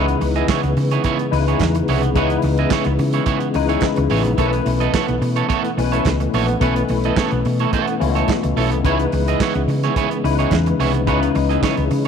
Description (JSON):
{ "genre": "disco", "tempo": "108 BPM", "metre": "4/4", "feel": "straight", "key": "unclear", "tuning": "A4 = 440 Hz", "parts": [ { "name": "barky tine electric piano", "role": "accompaniment", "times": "0.0-12.1 s", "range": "B2 to B4", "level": "-22 LUFS", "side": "left 13 dB", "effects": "ensemble chorus" }, { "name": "electric guitar at the edge of break-up", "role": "accompaniment", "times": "0.0-12.1 s", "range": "B3 to D#5", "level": "-23 LUFS", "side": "right 12 dB", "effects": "wide subtle chorus" }, { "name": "percussive tonewheel organ", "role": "sustained chords", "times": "0.0-12.1 s", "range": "C#3 to C#4", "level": "-24 LUFS", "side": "equal", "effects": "chorus vibrato, fast rotary speaker" }, { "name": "hollow-body short-scale fingered electric bass", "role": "bass", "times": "0.0-12.1 s", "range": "A1 to C#3", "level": "-20 LUFS", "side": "equal", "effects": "none" }, { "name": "warm soul drum kit", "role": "drums", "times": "0.1-12.1 s", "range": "handclaps, hi-hat, kick drum, snare drum", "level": "-24 LUFS", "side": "right 4 dB", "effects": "none" } ], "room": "light reverb, small room ambience", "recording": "1960s-style stereo with parts hard left and right", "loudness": "-16 LUFS", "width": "side -7 dB against mid", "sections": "0.0-12.1 A section", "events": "none", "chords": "0.0 C#m7; 4.4 B9sus4; 8.8 C#m7", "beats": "0.49 1.05 1.60 | 2.16 2.72 3.27 3.83 | 4.39 4.94 5.50 6.06 | 6.61 7.17 7.73 8.29 | 8.84 9.40 9.96 10.51 | 11.07 11.63" }